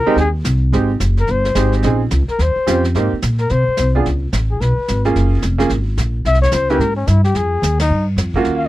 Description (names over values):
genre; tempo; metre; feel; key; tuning
jazz, small-group swing and bop; 218 BPM; 4/4; swing 61% on 8ths; F minor; A4 = 435 Hz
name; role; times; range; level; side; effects
mellow trumpet; melody; 0.0-8.7 s; Db4 to F5; -18 LUFS; left 3 dB; none
upright bass; bass; 0.0-8.7 s; F1 to C3; -16 LUFS; equal; none
bright upright piano; accompaniment; 0.1-8.7 s; Ab3 to Ab4; -18 LUFS; right 4 dB; none
vintage brush drum kit; drums; 0.2-8.7 s; brushed snare drum, hi-hat, kick drum, ride cymbal, snare drum; -26 LUFS; right 1 dB; none
room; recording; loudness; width
little or no reverb; dry, close 1970s-style studio recording; -14 LUFS; side -16 dB against mid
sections
0.7-8.7 A section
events
band accent 7.8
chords
0.0 Fm9 (rootless); 0.7 Abmaj7; 1.8 Bbm11; 2.4 Eb13; 2.9 Abmaj9; 4.0 Db7(no3); 5.2 Gbmaj9; 6.3 C(b9); 7.4 Fm9